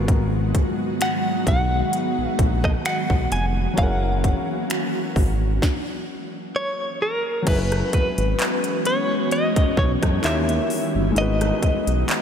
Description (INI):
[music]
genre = contemporary R&B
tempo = 65 BPM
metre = 4/4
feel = swing 54% on 16ths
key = unclear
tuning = A4 = 441 Hz
[part]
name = warm grand piano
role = accompaniment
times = 0.0-12.2 s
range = G#2 to C#5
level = -29 LUFS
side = left 4 dB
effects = none
[part]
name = ethereal airy pad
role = sustained chords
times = 0.0-12.2 s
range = D#3 to F#4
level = -26 LUFS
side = equal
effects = ensemble chorus, built-in reverb, sidechain pumping
[part]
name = smooth synth bass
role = bass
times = 0.0-12.0 s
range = E#1 to F#2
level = -23 LUFS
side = equal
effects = none
[part]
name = trap drum kit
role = drums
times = 0.1-12.2 s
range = crash cymbal, finger snaps, handclaps, hi-hat, kick drum, rim click, snare drum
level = -24 LUFS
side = equal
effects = none
[part]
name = direct-recorded clean electric guitar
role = melody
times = 1.0-12.1 s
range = A#4 to G#5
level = -25 LUFS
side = equal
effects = tremolo, diffuse ambient delay
[sound]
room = moderate huge ambient reverb, RT60 4.1 s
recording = dreamy mix soaked in reverb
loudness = -19 LUFS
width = side -8 dB against mid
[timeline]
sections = 0.0-7.5 A section; 7.5-12.2 B section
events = stop 5.6-7.5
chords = 0.0 G#m7; 3.8 F#7; 7.5 F#9sus4; 10.2 D#7b9; 11.2 G#m9